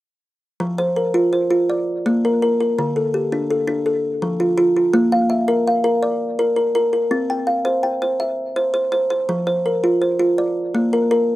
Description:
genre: southern african traditional.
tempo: 110 BPM (dotted quarters).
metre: 12/8.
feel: straight.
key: F major.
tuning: A4 = 440 Hz.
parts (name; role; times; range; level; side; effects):
kalimba; arpeggios; 0.6-11.4 s; D3 to G5; -16 LUFS; equal; slapback echo.
room: light reverb.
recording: recorded outdoors, with no room sound.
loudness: -16 LUFS.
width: side -16 dB against mid.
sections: 0.6-11.4 A section.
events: none.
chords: 0.6 F5; 1.7 Bb; 2.8 D5; 3.9 F; 4.9 Bb; 7.1 C; 9.3 F5; 10.4 Bb.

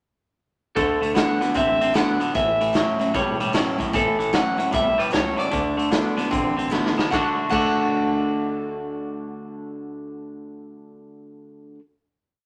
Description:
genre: rockabilly.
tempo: 151 BPM.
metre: 4/4.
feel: swing 65% on 8ths.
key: D major.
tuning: A4 = 439 Hz.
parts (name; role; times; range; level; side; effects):
electric guitar through a small old amp; melody; 0.8-11.7 s; A4 to F#5; -26 LUFS; equal; none.
picked steel-string acoustic guitar; accompaniment; 0.8-11.8 s; E2 to F#4; -31 LUFS; equal; none.
twangy electric guitar; riff; 0.8-11.8 s; A2 to F#4; -27 LUFS; equal; none.
upright bass; bass; 0.8-11.8 s; E1 to D2; -36 LUFS; equal; none.
raw garage drum kit; drums; 0.8-7.7 s; crash cymbal, hi-hat, kick drum, snare drum; -29 LUFS; equal; none.
room: moderate small room reverb, RT60 0.5 s.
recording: none.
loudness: -22 LUFS.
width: mono.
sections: 0.8-7.1 A section; 7.1-10.3 final chord.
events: drum fill 6.7-7.1.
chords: 0.8 D; 2.3 A7; 5.5 D.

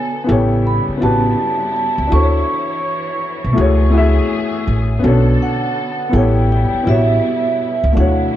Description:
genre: lo-fi hip hop.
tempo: 82 BPM.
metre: 4/4.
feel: swing 63% on 16ths.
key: unclear.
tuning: A4 = 440 Hz.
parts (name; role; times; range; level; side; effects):
vibraphone with soft mallets; melody; 0.0-8.4 s; E5 to C#6; -20 LUFS; right 2 dB; low-pass filter, analog delay.
dark upright piano; accompaniment; 0.0-8.4 s; A3 to E5; -18 LUFS; left 2 dB; cassette tape, low-pass filter.
muted studio string section; sustained chords; 0.0-8.4 s; B2 to C#5; -26 LUFS; equal; low-pass filter.
upright bass; bass; 0.3-8.3 s; A1 to D2; -15 LUFS; equal; none.
room: light reverb.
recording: cassette tape.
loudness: -13 LUFS.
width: side -12 dB against mid.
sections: 0.0-8.4 A section.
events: none.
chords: 0.3 A13; 2.1 Dmaj9; 3.6 F#m9/C#; 5.0 Bm7; 6.1 A13.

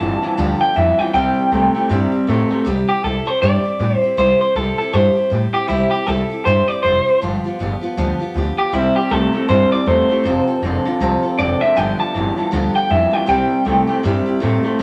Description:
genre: rock.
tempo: 158 BPM.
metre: 4/4.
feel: swing 60% on 8ths.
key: C major.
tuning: A4 = 441 Hz.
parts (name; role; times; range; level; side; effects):
electric guitar through a small old amp; melody; 0.0-14.0 s; E4 to A5; -19 LUFS; equal; spring reverb.
picked steel-string acoustic guitar; accompaniment; 0.0-14.8 s; G2 to A4; -25 LUFS; equal; none.
electric guitar through a small old amp; riff; 0.0-2.6, 8.7-14.8 s; F2 to A3; -22 LUFS; equal; none.
upright bass; bass; 0.0-14.8 s; F1 to A2; -24 LUFS; equal; none.
room: wet studio reverb, RT60 0.6 s.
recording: none.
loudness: -17 LUFS.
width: mono.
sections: 0.0-2.7 A section; 2.7-14.8 A section.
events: none.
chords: 0.0 G7; 1.1 C; 7.2 G7; 8.7 C; 10.2 F; 11.8 G7; 13.3 C.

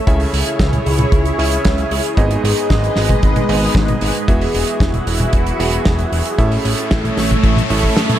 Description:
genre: italo disco.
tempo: 114 BPM.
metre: 4/4.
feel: straight.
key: C# minor.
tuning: A4 = 439 Hz.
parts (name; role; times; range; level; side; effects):
lush unison pad; sustained chords; 0.0-8.2 s; G#3 to E5; -20 LUFS; equal; chorus, phaser, vintage 12-bit sampler grit.
clear electric grand piano; stabs; 0.1-8.2 s; G#2 to E5; -22 LUFS; right 2 dB; digital delay.
fat analog bass; bass; 0.1-7.9 s; E1 to C#2; -19 LUFS; equal; none.
damped 70s drum kit; drums; 0.1-8.2 s; hi-hat, snare drum, toms; -20 LUFS; right 1 dB; studio reverb.
kick drum; drums; 0.1-7.9 s; none; -16 LUFS; equal; studio reverb.
riser; sound effects; 5.3-8.2 s; none; -27 LUFS; left 1 dB; none.
room: light reverb, small room ambience.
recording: none.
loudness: -13 LUFS.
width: side -12 dB against mid.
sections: 0.0-8.2 A section.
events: riser 5.3-8.2; band accent 8.0.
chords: 0.1 C#m; 2.2 G#m; 4.3 Eadd9; 6.4 A.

